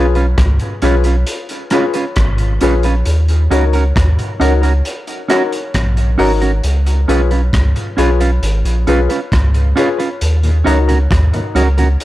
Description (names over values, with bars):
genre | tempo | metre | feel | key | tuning
dub reggae | 67 BPM | 4/4 | straight | unclear | A4 = 440 Hz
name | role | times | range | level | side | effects
semi-hollow electric guitar | accompaniment | 0.0-11.9 s | Db4 to Cb5 | -19 LUFS | right 4 dB | dub echo
warm upright piano | stabs | 0.0-10.9 s | Eb4 to Db5 | -20 LUFS | left 7 dB | dub echo
warm sub bass | bass | 0.0-12.0 s | Ab1 to Eb2 | -13 LUFS | equal | none
crunchy breakbeat drum kit | drums | 0.2-12.0 s | hi-hat, kick drum, rim click | -20 LUFS | equal | none
tonewheel organ | accompaniment | 10.4-11.9 s | Eb2 to Eb4 | -23 LUFS | left 1 dB | overdrive, slow rotary speaker
room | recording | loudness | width
light reverb, small room reverb | dark, warm production | -12 LUFS | side -15 dB against mid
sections
0.0-12.0 A section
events
break 0.0-10.2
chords
0.0 Db7; 3.1 Ebm7; 6.6 Db7; 10.2 Ebm7